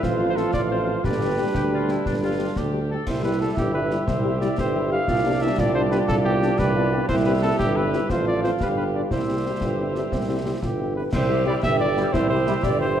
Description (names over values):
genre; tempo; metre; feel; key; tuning
military-style march for wind band; 119 BPM (dotted quarters); 6/8; straight; C major; A4 = 440 Hz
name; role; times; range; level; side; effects
mellow cornet; melody; 0.0-13.0 s; G4 to F5; -28 LUFS; equal; none
clear euphonium; second line; 0.0-13.0 s; C4 to G4; -28 LUFS; right 4 dB; none
warm woodwind section; second line; 0.0-13.0 s; D4 to F5; -32 LUFS; left 1 dB; none
mellow trombone section; sustained chords; 0.0-13.0 s; F3 to F4; -29 LUFS; right 1 dB; none
warm tuba; bass; 0.0-13.0 s; G1 to D2; -25 LUFS; right 2 dB; none
concert snare drum, concert bass drum and clash cymbals; drums; 0.0-12.8 s; none; -29 LUFS; left 1 dB; none
mellow French horn section; accompaniment; 0.2-13.0 s; G3 to G4; -30 LUFS; left 6 dB; none
mellow hollow large flute ensemble; second line; 10.6-13.0 s; G4 to E5; -30 LUFS; equal; none
room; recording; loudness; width
moderate scoring stage reverb, RT60 1.7 s; dark, warm production; -20 LUFS; side -9 dB against mid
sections
0.0-11.1 A section; 11.1-13.0 B section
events
none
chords
0.0 F/A; 1.0 G; 3.1 C; 5.1 G7/C; 7.1 C; 8.1 F/A; 8.6 G5; 9.1 C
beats
| 0.04 0.54 | 1.05 1.55 | 2.06 2.56 | 3.06 3.57 | 4.07 4.58 | 5.08 5.58 | 6.09 6.59 | 7.10 7.60 | 8.11 8.61 | 9.11 9.62 | 10.12 10.62 | 11.13 11.63 | 12.14 12.64